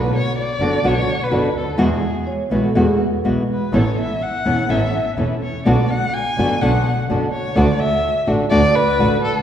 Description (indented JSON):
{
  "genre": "tango",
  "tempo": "126 BPM",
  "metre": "4/4",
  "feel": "rubato",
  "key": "unclear",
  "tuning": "A4 = 437 Hz",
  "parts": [
    { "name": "warm violin", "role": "second line", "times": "0.0-9.4 s", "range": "G#4 to G#5", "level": "-21 LUFS", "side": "left 1 dB", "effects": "none" },
    { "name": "dark studio string section", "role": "stabs", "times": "0.0-9.2 s", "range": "G#3 to A4", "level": "-27 LUFS", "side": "right 2 dB", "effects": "none" },
    { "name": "clear double bass", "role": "bass", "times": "0.0-9.2 s", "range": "E1 to E2", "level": "-22 LUFS", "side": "right 1 dB", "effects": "none" },
    { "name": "flamenco guitar", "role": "accompaniment", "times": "0.6-9.2 s", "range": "B2 to F#4", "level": "-19 LUFS", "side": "left 1 dB", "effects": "none" },
    { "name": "vibraphone with soft mallets", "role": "second line", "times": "2.3-3.3 s", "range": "G#4 to C#5", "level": "-24 LUFS", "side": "right 2 dB", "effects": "none" }
  ],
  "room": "wet concert hall reverb, RT60 1.8 s",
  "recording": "recorded in a church or concert hall",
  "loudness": "-16 LUFS",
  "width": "side -9 dB against mid",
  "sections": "0.0-9.4 A section",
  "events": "violin solo 0.0-9.4",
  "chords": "0.0 Bm; 1.8 Eadd9; 3.7 Aadd9; 5.7 Bm; 7.6 D"
}